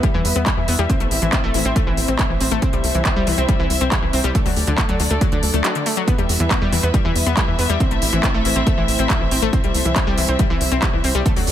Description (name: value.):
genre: uplifting trance.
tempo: 139 BPM.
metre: 4/4.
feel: straight.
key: unclear.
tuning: A4 = 441 Hz.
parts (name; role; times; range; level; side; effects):
dark studio string section; sustained chords; 0.0-11.5 s; F#3 to E5; -24 LUFS; equal; sidechain pumping, low-pass filter.
analog pluck; arpeggios; 0.0-11.5 s; D3 to C4; -23 LUFS; left 3 dB; chorus, sidechain pumping, ping-pong delay.
electronic kick drum; drums; 0.0-11.3 s; none; -20 LUFS; equal; overdrive, small room ambience.
techno drum kit; drums; 0.0-11.5 s; handclaps, hi-hat; -24 LUFS; equal; overdrive, small room ambience.
tight sequencer bass; bass; 0.1-11.5 s; A1 to E2; -22 LUFS; equal; sidechain pumping.
room: light reverb.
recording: none.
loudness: -16 LUFS.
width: side -11 dB against mid.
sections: 0.0-11.5 A section.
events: filter sweep on string section 0.0-11.5; kick drops out 5.6-6.1.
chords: 0.0 Em; 0.9 Am; 2.6 C; 4.3 D; 6.1 Em; 7.8 Am; 9.5 C.